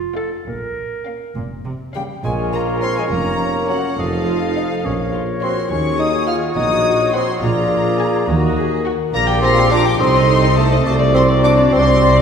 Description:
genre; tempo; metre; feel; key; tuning
cinematic; 70 BPM (dotted quarters); 6/8; straight; Bb minor, G minor from 9.1 s; A4 = 440 Hz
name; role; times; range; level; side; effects
warm clarinet; second line; 0.0-12.2 s; F4 to Bb4; -27 LUFS; equal; none
warm chamber double bass section; bass; 0.0-12.2 s; F1 to Eb2; -22 LUFS; right 3 dB; none
warm studio cello section; bass; 0.0-12.2 s; F2 to Eb3; -25 LUFS; right 1 dB; none
warm chamber violin section; melody; 0.2-12.2 s; C5 to Bb5; -24 LUFS; left 5 dB; none
warm chamber violin section; second line; 0.2-12.2 s; Db4 to F6; -27 LUFS; left 4 dB; none
warm chamber viola section; accompaniment; 0.2-12.2 s; A3 to A4; -25 LUFS; equal; none
mellow bassoon; accompaniment; 1.9-12.2 s; F3 to F4; -20 LUFS; equal; none
flute section; second line; 2.0-12.2 s; F5 to F6; -25 LUFS; left 2 dB; none
clear oboe; second line; 2.2-12.2 s; Db5 to Eb5; -26 LUFS; equal; none
mellow French horn section; sustained chords; 2.2-12.2 s; Eb4 to D5; -23 LUFS; left 3 dB; none
warm tuba; bass; 2.2-12.2 s; F1 to Eb2; -22 LUFS; right 1 dB; none
room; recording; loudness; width
wet scoring stage reverb, RT60 1.4 s; heard from further back in the room; -14 LUFS; side -7 dB against mid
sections
0.0-2.2 A section; 2.2-12.2 A section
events
none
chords
0.5 Bbm; 4.0 F7; 4.8 Bbm; 5.7 Ebm7; 7.4 Bb7; 8.3 Ebm; 9.1 Gm/Bb; 10.0 Adim/C; 10.9 D7/C

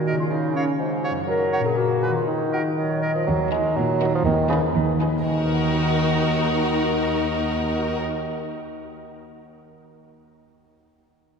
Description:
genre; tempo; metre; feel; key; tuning
cinematic, playful, whimsical film cue; 122 BPM; 2/4; straight; Eb minor; A4 = 445 Hz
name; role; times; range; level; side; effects
dark clarinet; second line; 0.0-2.8 s; Db4 to Bb4; -27 LUFS; left 1 dB; none
warm bassoon; accompaniment; 0.0-8.0 s; Ab2 to Bb3; -26 LUFS; right 1 dB; none
concert harp; arpeggios; 0.0-9.2 s; Gb2 to Gb5; -26 LUFS; left 1 dB; none
bright oboe; second line; 0.1-3.1 s; Bb4 to Db5; -34 LUFS; right 2 dB; none
flute section; second line; 0.1-3.3 s; Db5 to Ab5; -33 LUFS; right 1 dB; none
rich chamber cello section; bass; 3.3-8.0 s; Eb2 to Bb2; -25 LUFS; right 2 dB; none
rich chamber violin section; melody; 3.5-8.0 s; Bb4 to Cb5; -31 LUFS; left 1 dB; none
rich studio violin section; second line; 3.5-8.0 s; Gb4 to Ab4; -32 LUFS; left 2 dB; none
rich studio viola section; accompaniment; 3.5-8.0 s; Eb4; -31 LUFS; equal; none
room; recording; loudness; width
wet cathedral reverb, RT60 4.2 s; none; -20 LUFS; side -6 dB against mid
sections
0.0-3.3 A section; 3.3-5.3 B section; 5.3-7.2 C section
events
none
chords
0.3 Db; 1.3 Gb; 1.8 Bb7b9; 2.3 Ebm; 4.3 Abm/Eb; 5.3 Ebm

